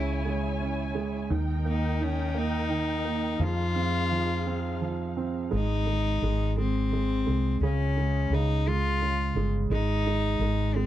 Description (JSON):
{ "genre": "six-eight pop ballad", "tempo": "57 BPM (dotted quarters)", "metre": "6/8", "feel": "straight", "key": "Ab major", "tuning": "A4 = 440 Hz", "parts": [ { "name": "rich cello", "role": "melody", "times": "0.0-10.9 s", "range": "C4 to F4", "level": "-30 LUFS", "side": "left 4 dB", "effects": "none" }, { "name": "warm grand piano", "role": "accompaniment", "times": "0.0-10.9 s", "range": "Db3 to Db4", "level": "-30 LUFS", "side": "right 6 dB", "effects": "none" }, { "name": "muted studio string section", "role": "sustained chords", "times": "0.0-5.5 s", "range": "Eb4 to Ab5", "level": "-36 LUFS", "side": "left 3 dB", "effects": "none" }, { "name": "woody fretless electric bass", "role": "bass", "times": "0.0-10.9 s", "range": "G1 to F2", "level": "-28 LUFS", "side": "left 1 dB", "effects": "none" } ], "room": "light reverb", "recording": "dry, close 1970s-style studio recording", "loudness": "-25 LUFS", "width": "side -12 dB against mid", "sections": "0.0-5.5 A section; 5.5-10.9 B section", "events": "none", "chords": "0.0 Dbm; 1.3 Eb; 3.4 Fm7; 5.5 Ab; 7.6 Db; 9.7 Ab5" }